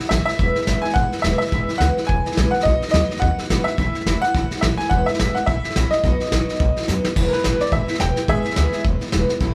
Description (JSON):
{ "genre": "rockabilly", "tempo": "213 BPM", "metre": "4/4", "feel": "swing 58% on 8ths", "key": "E major", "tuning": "A4 = 440 Hz", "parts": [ { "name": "bright upright piano", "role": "melody", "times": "0.0-8.8 s", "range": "G#4 to G#5", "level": "-25 LUFS", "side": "equal", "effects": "none" }, { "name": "picked steel-string acoustic guitar", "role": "accompaniment", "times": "0.0-9.5 s", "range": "E2 to F#4", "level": "-27 LUFS", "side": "equal", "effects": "none" }, { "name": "upright bass", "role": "bass", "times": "0.0-9.5 s", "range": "E1 to F#2", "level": "-25 LUFS", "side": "equal", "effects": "none" }, { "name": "vintage brush drum kit", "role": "drums", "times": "0.0-9.5 s", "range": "crash cymbal, hi-hat, kick drum, snare drum", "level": "-25 LUFS", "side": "equal", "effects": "none" } ], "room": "moderate studio reverb, RT60 0.8 s", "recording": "band playing live in one room", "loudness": "-20 LUFS", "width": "mono", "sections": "0.0-7.2 A section; 7.2-9.5 B section", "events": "drum fill 6.9; upright piano solo 7.2-9.5", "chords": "0.4 E; 2.6 B; 3.8 A; 4.9 E; 5.5 A; 6.0 B; 7.2 E" }